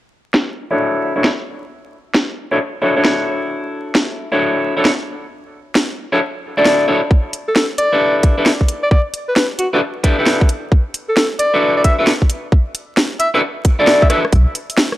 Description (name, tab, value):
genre	UK garage, two-step garage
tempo	133 BPM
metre	4/4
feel	swing 66% on 16ths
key	unclear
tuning	A4 = 440 Hz
part	garage drum kit	drums	0.3-15.0 s	hi-hat, rim click, snare drum	-16 LUFS	equal	low-pass filter on snare, low-pass filter on hats
part	clean electric guitar	stabs	0.7-14.2 s	D4 to D5	-16 LUFS	left 1 dB	low-pass filter, analog delay
part	electronic kick drum	drums	7.1-14.4 s	none	-12 LUFS	equal	none
part	warm alto saxophone	melody	7.5-14.2 s	F#4 to E5	-18 LUFS	equal	analog delay
part	soft dub sub bass	bass	14.3-14.5 s	B1	-12 LUFS	equal	tube saturation, sidechain pumping
room	light reverb, digital ambience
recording	dry, gritty hardware recording, vinyl crackle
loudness	-13 LUFS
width	side -15 dB against mid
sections	0.0-14.3 A section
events	drum fill 14.1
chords	0.0 Dmaj9; 7.1 G6; 10.5 D69; 14.3 N.C.